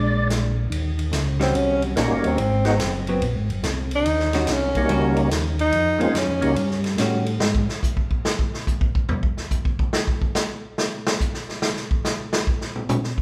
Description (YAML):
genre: soul jazz organ trio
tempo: 143 BPM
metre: 4/4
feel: swing 66% on 8ths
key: unclear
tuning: A4 = 440 Hz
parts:
  - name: percussive tonewheel organ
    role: melody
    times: 0.0-6.6 s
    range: G3 to D5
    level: -26 LUFS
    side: equal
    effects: slow rotary speaker, overdrive, chorus vibrato
  - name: vintage hollow-body jazz guitar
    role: accompaniment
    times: 0.0-7.2 s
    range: Eb3 to F#4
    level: -29 LUFS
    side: equal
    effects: none
  - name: tonewheel organ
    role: bass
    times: 0.0-7.7 s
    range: Gb1 to A2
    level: -26 LUFS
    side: equal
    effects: chorus vibrato
  - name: vintage drum kit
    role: drums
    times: 0.3-13.2 s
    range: hi-hat, kick drum, ride cymbal, snare drum, toms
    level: -26 LUFS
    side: equal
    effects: none
  - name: breathy tenor saxophone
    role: melody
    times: 1.4-6.9 s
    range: F#3 to Eb4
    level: -25 LUFS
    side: equal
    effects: none
room: moderate large studio reverb, RT60 1.3 s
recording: band playing live in one room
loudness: -22 LUFS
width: mono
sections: 0.7-13.2 A section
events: tenor saxophone solo 0.7-13.2; drum solo 7.4-13.2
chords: 0.0 Bb7; 0.7 Eb7#9; 2.4 Ab7; 4.1 Eb7#9; 5.7 Bbm7; 6.6 Eb7#9; 7.4 N.C.